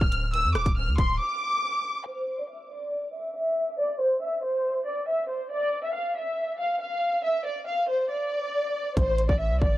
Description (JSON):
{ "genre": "hip hop, drill", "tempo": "139 BPM", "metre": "4/4", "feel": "half-time", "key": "unclear", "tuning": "A4 = 438 Hz", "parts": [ { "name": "dark studio violin section", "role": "melody", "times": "0.0-9.8 s", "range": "C5 to F6", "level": "-26 LUFS", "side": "equal", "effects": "low-pass filter" }, { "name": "long sustained 808-style bass", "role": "bass", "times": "0.0-1.2, 9.0-9.8 s", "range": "D1 to F2", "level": "-26 LUFS", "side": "equal", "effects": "tube saturation" }, { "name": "drill drum kit", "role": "drums", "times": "0.0-1.1, 9.0-9.7 s", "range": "hi-hat, kick drum, rim click", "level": "-25 LUFS", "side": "equal", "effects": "none" } ], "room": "digital ambience", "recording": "dry, gritty hardware recording, cassette tape", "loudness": "-24 LUFS", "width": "side -15 dB against mid", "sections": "0.0-2.1 A section; 2.1-9.0 B section", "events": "break 1.2-2.1; filter sweep on violin section 2.1-9.0", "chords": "0.0 Dm; 2.1 N.C.; 9.0 Am", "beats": "| 0.34 0.77 1.20 1.63 | 2.06 2.49 2.92 3.36 | 3.79 4.22 4.65 5.08 | 5.51 5.95 6.38 6.81 | 7.24 7.67 8.11 8.54 | 8.97 9.40" }